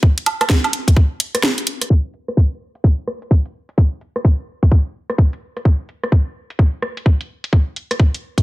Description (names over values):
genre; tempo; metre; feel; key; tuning
UK garage; 128 BPM; 4/4; swing 62% on 16ths; none; none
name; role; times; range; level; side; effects
electronic kick drum; drums; 0.0-8.4 s; none; -12 LUFS; equal; overdrive, small room ambience
garage drum kit; drums; 0.2-8.4 s; hi-hat, rim click, snare drum, woodblock; -19 LUFS; right 1 dB; overdrive, small room ambience
room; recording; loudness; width
little or no reverb; dense, heavily limited modern master, low-pass filter; -15 LUFS; side -19 dB against mid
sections
0.0-1.9 A section; 1.9-8.4 B section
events
break 1.4-1.9; filter sweep 1.9-8.4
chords
none